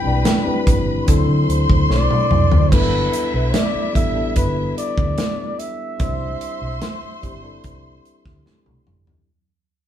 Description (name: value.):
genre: lush 1970s-style soul.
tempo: 73 BPM.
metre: 4/4.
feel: straight.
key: G major.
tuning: A4 = 440 Hz.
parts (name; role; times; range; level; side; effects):
breathy flugelhorn; melody; 0.0-8.5 s; B4 to G5; -24 LUFS; left 2 dB; none.
warm studio string section; second line; 0.0-8.8 s; E4 to C6; -28 LUFS; left 2 dB; none.
mellow tine electric piano; accompaniment; 0.0-9.3 s; F#3 to D5; -25 LUFS; left 3 dB; none.
vintage muted fingered electric bass; bass; 0.1-9.2 s; G1 to D3; -21 LUFS; equal; none.
modern studio drum kit; drums; 0.3-9.3 s; crash cymbal, hi-hat, kick drum, snare drum, toms; -19 LUFS; right 1 dB; none.
room: moderate stone room reverb, RT60 1.0 s.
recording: band playing live in one room.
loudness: -16 LUFS.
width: side -10 dB against mid.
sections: 0.0-2.7 A section; 2.7-9.3 B section.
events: drum fill 1.9-2.7, 8.5-9.3; fade-out 2.7-9.3.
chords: 0.0 Cmaj9; 1.1 D9; 2.7 G6; 6.0 Cadd9.